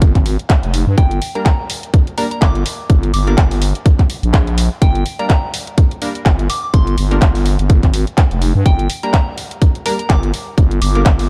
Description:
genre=bass house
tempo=125 BPM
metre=4/4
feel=swing 57% on 16ths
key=G phrygian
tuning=A4 = 440 Hz
part: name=growling FM bass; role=bass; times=0.0-11.3 s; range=F1 to G2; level=-18 LUFS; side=equal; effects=sidechain pumping
part: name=electronic kick drum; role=drums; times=0.0-11.2 s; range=none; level=-15 LUFS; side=equal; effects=none
part: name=house drum kit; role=drums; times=0.0-11.3 s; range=handclaps, hi-hat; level=-25 LUFS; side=equal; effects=none
part: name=soft synth bell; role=melody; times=1.0-11.0 s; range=G5 to D6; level=-28 LUFS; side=equal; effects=chorus, phaser, delay
part: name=band-passed chord stab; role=stabs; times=1.4-11.0 s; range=G3 to Bb4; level=-27 LUFS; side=equal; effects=analog chorus, cassette tape, sidechain pumping, delay
room=little or no reverb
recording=dark, warm production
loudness=-15 LUFS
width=mono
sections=0.0-11.3 A section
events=none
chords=0.0 Gm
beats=0.02 0.50 | 0.98 1.46 1.94 2.42 | 2.90 3.38 3.86 4.34 | 4.82 5.30 5.78 6.26 | 6.74 7.22 7.70 8.18 | 8.66 9.14 9.62 10.10 | 10.58 11.06

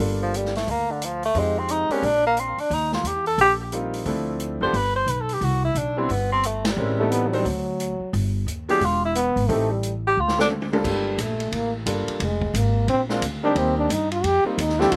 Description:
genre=jazz, small-group swing and bop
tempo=177 BPM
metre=4/4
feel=swing 63% on 8ths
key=G minor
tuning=A4 = 441 Hz
part: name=bright upright piano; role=accompaniment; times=0.0-15.0 s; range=F3 to C5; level=-29 LUFS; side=equal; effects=none
part: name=upright bass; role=bass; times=0.0-15.0 s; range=E1 to G2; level=-29 LUFS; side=equal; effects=none
part: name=open jazz drum kit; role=drums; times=0.0-15.0 s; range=crash cymbal, hi-hat, kick drum, ride cymbal, snare drum, toms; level=-33 LUFS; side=equal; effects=none
part: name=mellow tenor saxophone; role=melody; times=0.2-10.5 s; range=D3 to C5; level=-24 LUFS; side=equal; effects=slapback echo
part: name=breathy trombone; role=second line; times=7.0-15.0 s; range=F#3 to G4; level=-26 LUFS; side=equal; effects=none
room=little or no reverb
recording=none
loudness=-23 LUFS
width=mono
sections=0.0-10.8 A section; 10.8-15.0 B section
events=band accent 6.6; drum fill 10.2-10.8; trombone solo 10.8-15.0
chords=0.0 Gm9; 1.3 Fm9; 2.0 Bbadd9; 2.7 Eb6; 4.1 Dm7; 4.7 G; 5.4 Cmaj7(no3); 6.8 Am7b5; 7.5 D; 8.1 G5; 8.8 E; 9.5 Am7b5; 10.2 D7; 10.8 Gm9; 12.2 Fm; 12.9 Bb9; 13.6 Eb6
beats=0.33 0.67 1.01 | 1.35 1.69 2.03 2.37 | 2.70 3.04 3.38 3.72 | 4.06 4.40 4.74 5.08 | 5.42 5.76 6.10 6.43 | 6.78 7.11 7.45 7.79 | 8.13 8.47 8.81 9.15 | 9.49 9.83 10.17 10.51 | 10.85 11.19 11.52 11.86 | 12.20 12.54 12.88 13.22 | 13.56 13.90 14.24 14.58 | 14.92

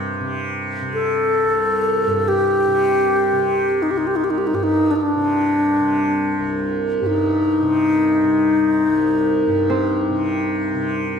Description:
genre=world meditative, free-time meditation music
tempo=free time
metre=none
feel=none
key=C kumoi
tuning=A4 = 439 Hz
part: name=tanpura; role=drone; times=0.0-11.2 s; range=C2 to C3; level=-23 LUFS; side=right 3 dB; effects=none
part: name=bright reedy wooden-headed alto flute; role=melody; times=0.9-11.0 s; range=D4 to A4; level=-17 LUFS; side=left 2 dB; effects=tape echo
part: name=kora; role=texture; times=9.7-11.2 s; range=C4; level=-28 LUFS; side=right 3 dB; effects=stereo widening
room=wet recital hall reverb, RT60 1.7 s, small room ambience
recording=dark, warm production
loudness=-16 LUFS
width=side -7 dB against mid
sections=0.0-11.2 A section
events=none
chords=none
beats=free time

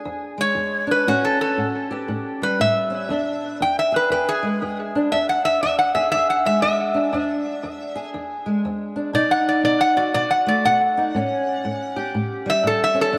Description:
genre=acoustic country blues, solo or duo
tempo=119 BPM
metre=4/4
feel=swing 62% on 8ths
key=E mixolydian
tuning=A4 = 438 Hz
part: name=fingerpicked old ladder-braced acoustic guitar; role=accompaniment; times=0.0-13.2 s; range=E2 to G#4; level=-26 LUFS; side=equal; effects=lush chorus
part: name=metal-body resonator slide guitar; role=melody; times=0.4-13.2 s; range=F#4 to G5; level=-22 LUFS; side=equal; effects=analog delay
room=wet plate reverb, RT60 2.6 s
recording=dreamy mix soaked in reverb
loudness=-21 LUFS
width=mono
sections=0.0-13.2 A section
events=none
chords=0.0 E7; 1.1 A7; 3.1 E7; 9.1 B7; 11.1 A7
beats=0.06 0.57 | 1.07 1.58 2.08 2.59 | 3.10 3.60 4.11 4.61 | 5.12 5.62 6.13 6.63 | 7.13 7.64 8.14 8.64 | 9.14 9.64 10.14 10.64 | 11.14 11.64 12.14 12.64 | 13.14

